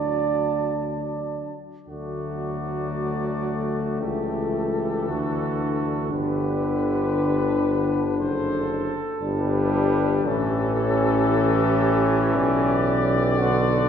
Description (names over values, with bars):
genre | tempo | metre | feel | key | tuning
classical, hymn-like piece for brass band | 57 BPM (dotted quarters) | 6/8 | rubato | D major | A4 = 442 Hz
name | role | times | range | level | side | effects
mellow cornet | melody | 0.0-13.9 s | A4 to A5 | -30 LUFS | left 5 dB | none
warm flugelhorn | second line | 0.0-13.9 s | F#4 to D5 | -30 LUFS | right 7 dB | none
bright trombone | accompaniment | 0.0-13.9 s | D3 to G3 | -29 LUFS | right 1 dB | none
clear trombone section | accompaniment | 0.0-13.9 s | A3 to D4 | -26 LUFS | left 2 dB | none
mellow tuba | bass | 0.0-13.9 s | F#1 to D2 | -26 LUFS | equal | none
room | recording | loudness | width
wet concert hall reverb, RT60 2.3 s | heard from further back in the room | -21 LUFS | side -8 dB against mid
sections
0.0-1.9 A section; 1.9-13.9 B section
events
none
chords
0.0 D; 4.0 A7/C#; 5.1 D; 6.1 G; 8.2 D7/F#; 9.2 G; 10.3 A7; 12.4 Bm